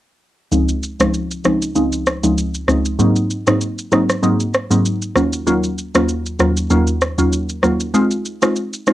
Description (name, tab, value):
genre	afrobeats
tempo	97 BPM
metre	4/4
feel	swing 55% on 16ths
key	unclear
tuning	A4 = 443 Hz
part	glassy wavetable pluck	accompaniment	0.5-8.9 s	Db2 to F4	-16 LUFS	equal	chorus, low-pass filter
part	electronic shaker and rim click	drums	0.5-8.9 s	none	-19 LUFS	equal	cassette tape
room	moderate small room reverb, RT60 0.5 s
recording	home recording on cassette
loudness	-15 LUFS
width	side -14 dB against mid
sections	0.5-8.9 A section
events	filter sweep on synth pluck 0.5-8.9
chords	0.5 Dbmaj7; 3.0 Ab7; 5.2 Ebm7; 7.9 Fm7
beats	| 0.52 1.14 1.76 2.38 | 2.99 3.61 4.23 4.85 | 5.47 6.09 6.71 7.32 | 7.94 8.56